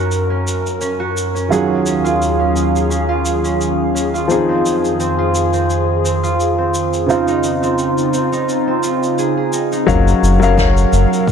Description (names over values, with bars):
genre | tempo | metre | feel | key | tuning
sunset chillout | 86 BPM | 4/4 | swing 54% on 16ths | unclear | A4 = 438 Hz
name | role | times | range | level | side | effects
warm grand piano | accompaniment | 0.0-11.3 s | Db3 to F5 | -19 LUFS | moving between left 7 dB and right 5 dB | auto-pan, tape echo
airy breathy pad | sustained chords | 0.0-11.3 s | Eb2 to F5 | -18 LUFS | equal | chorus
concert harp | arpeggios | 0.0-11.3 s | C4 to Ab4 | -20 LUFS | right 3 dB | tape echo
shaker and snare drum | drums | 0.1-11.3 s | none | -27 LUFS | left 1 dB | none
round analog bass | bass | 9.9-11.1 s | Gb1 | -13 LUFS | left 1 dB | none
electronic kick drum | drums | 9.9-11.3 s | none | -19 LUFS | equal | none
room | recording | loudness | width
moderate plate reverb, RT60 2.9 s | dark, warm production | -13 LUFS | side -7 dB against mid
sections
0.0-9.9 A section; 9.9-11.3 B section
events
filter sweep on harp 0.0-9.9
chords
0.0 Gbmaj7; 1.5 Ebm11; 4.3 Fm7; 7.1 Dbmaj9; 9.9 Gbmaj7